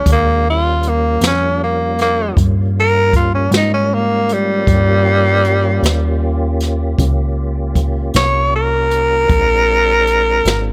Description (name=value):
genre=slow blues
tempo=52 BPM (dotted quarters)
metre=12/8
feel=straight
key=unclear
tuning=A4 = 438 Hz
part: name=growling tenor saxophone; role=melody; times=0.0-10.7 s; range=G3 to Db5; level=-17 LUFS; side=equal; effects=none
part: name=tonewheel organ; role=sustained chords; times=0.0-10.7 s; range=G3 to G4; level=-27 LUFS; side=equal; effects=slow rotary speaker, chorus vibrato
part: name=plucky analog bass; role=bass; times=0.0-10.7 s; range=Ab1 to Ab2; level=-19 LUFS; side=equal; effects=none
part: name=jazz brush drum kit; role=drums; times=0.1-10.6 s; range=hi-hat, kick drum, snare drum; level=-19 LUFS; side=equal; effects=none
room=studio reverb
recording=none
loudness=-15 LUFS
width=mono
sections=0.0-10.7 A section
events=tenor saxophone solo 0.0-10.7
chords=0.1 Eb9; 9.3 Bb9